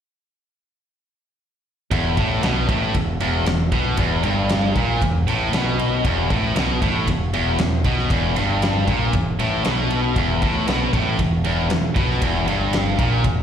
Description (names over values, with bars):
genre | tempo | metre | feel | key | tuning
classic rock | 117 BPM | 4/4 | straight | unclear | A4 = 440 Hz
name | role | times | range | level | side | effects
biting overdriven guitar | riff | 1.9-13.4 s | E2 to B2 | -24 LUFS | left 10 dB | slapback echo
tight distorted guitar | riff | 1.9-13.4 s | E2 to B2 | -23 LUFS | right 11 dB | distortion
growling picked electric bass | bass | 1.9-13.4 s | E1 to B1 | -24 LUFS | equal | overdrive
big rock drum kit | drums | 1.9-13.4 s | kick drum, ride cymbal, snare drum | -23 LUFS | equal | none
room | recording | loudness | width
light reverb | live gig heard through the venue's PA, recital hall reverb | -18 LUFS | side -8 dB against mid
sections
1.9-13.4 A section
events
none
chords
1.9 E5